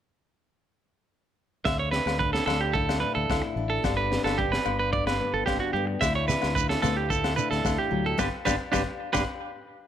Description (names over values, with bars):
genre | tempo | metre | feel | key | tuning
highlife guitar band | 110 BPM | 4/4 | straight | unclear | A4 = 440 Hz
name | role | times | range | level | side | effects
fingerpicked steel-string acoustic guitar | accompaniment | 1.7-9.2 s | G2 to G4 | -32 LUFS | left 6 dB | none
clean electric guitar | arpeggios | 1.7-9.2 s | D4 to E5 | -27 LUFS | right 5 dB | analog delay
fingered electric bass | bass | 1.7-9.2 s | G1 to G2 | -31 LUFS | equal | none
crunchy breakbeat drum kit | drums | 1.7-9.3 s | kick drum, snare drum | -31 LUFS | equal | none
agogo bells | percussion | 1.7-9.3 s | none | -35 LUFS | left 13 dB | none
shekere | percussion | 6.0-9.3 s | none | -34 LUFS | right 8 dB | none
room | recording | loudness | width
moderate spring reverb, RT60 1.9 s, small room ambience | none | -24 LUFS | side -10 dB against mid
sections
1.7-9.9 A section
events
band accent 8.2-9.9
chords
1.7 Dsus2; 3.8 G; 6.0 Dsus2; 8.2 G